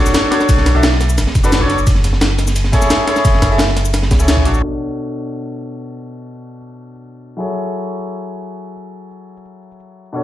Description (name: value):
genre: liquid drum and bass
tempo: 174 BPM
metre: 4/4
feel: straight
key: B minor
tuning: A4 = 444 Hz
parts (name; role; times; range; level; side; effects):
- bright concert grand piano; accompaniment; 0.0-10.2 s; B2 to E5; -20 LUFS; left 1 dB; vintage 12-bit sampler grit, digital delay
- breakbeat sampler-style drum kit; drums; 0.1-10.2 s; cabasa, hi-hat, ride cymbal, snare drum; -19 LUFS; equal; none
- crunchy breakbeat drum kit; drums; 0.1-4.5 s; hi-hat, snare drum; -24 LUFS; right 1 dB; high-pass filter on hats, high-pass filter on snare, high-pass filter on room
- warm sub bass; bass; 0.5-4.6 s; F#1 to C#2; -15 LUFS; equal; tube saturation
- electronic kick drum; drums; 0.5-4.4 s; none; -15 LUFS; equal; none
room: studio reverb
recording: played on a big sound system in a bare room, stone room reverb, low-pass filter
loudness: -12 LUFS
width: side -13 dB against mid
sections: 0.0-4.6 A section; 4.6-10.2 B section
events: drop 0.0-4.6; band accent 4.3; filter sweep 4.6-10.2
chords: 0.0 Bm9; 1.9 F#m9; 4.6 Bm9; 7.4 F#m9